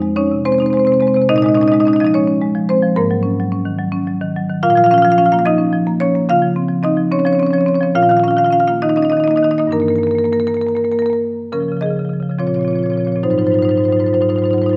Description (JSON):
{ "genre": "classical, contemporary piece for solo marimba", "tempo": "71 BPM (dotted quarters)", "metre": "6/8", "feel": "rubato", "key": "unclear", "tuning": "A4 = 440 Hz", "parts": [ { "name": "marimba with medium mallets", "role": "solo", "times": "0.0-14.8 s", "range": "F2 to F5", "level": "-15 LUFS", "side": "equal", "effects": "none" } ], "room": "moderate recital hall reverb, RT60 1.3 s", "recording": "none", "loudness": "-15 LUFS", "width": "mono", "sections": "0.0-11.5 A section; 11.5-14.8 B section", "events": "none", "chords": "0.0 Fm7; 1.3 Bbm7; 3.0 Ab9sus4; 4.6 Bbm; 6.3 Dbmaj7; 7.9 Bbmadd11; 9.7 Gm6; 11.5 Db; 12.4 Bbmadd9; 13.2 Ab6" }